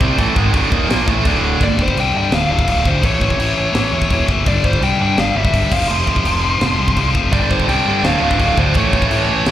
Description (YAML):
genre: heavy metal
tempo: 168 BPM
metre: 4/4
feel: straight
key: D minor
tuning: A4 = 439 Hz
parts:
  - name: heavy high-gain guitar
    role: riff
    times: 0.0-9.5 s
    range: D2 to C4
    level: -19 LUFS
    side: left 6 dB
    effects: distortion, slapback echo
  - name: heavy high-gain guitar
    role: riff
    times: 0.0-1.6, 7.3-9.5 s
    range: D2 to C4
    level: -19 LUFS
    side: right 11 dB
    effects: distortion, slapback echo
  - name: fuzz fingered electric bass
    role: bass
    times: 0.0-9.5 s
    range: D1 to G2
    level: -19 LUFS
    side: equal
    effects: overdrive
  - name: tight metal drum kit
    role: drums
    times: 0.0-9.5 s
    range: crash cymbal, kick drum, snare drum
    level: -20 LUFS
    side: equal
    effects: none
  - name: high-gain lead guitar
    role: melody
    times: 1.6-9.5 s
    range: C5 to C6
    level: -20 LUFS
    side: equal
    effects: distortion, slapback echo, digital delay
room: little or no reverb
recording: live gig heard through the venue's PA, club reverb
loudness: -13 LUFS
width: side -12 dB against mid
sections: 0.0-1.6 A section; 1.6-9.5 B section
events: none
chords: 0.0 Dm; 1.6 G5; 2.3 Dm; 3.0 A; 4.5 G5; 5.7 F5; 7.3 G5; 8.0 Dm; 8.7 A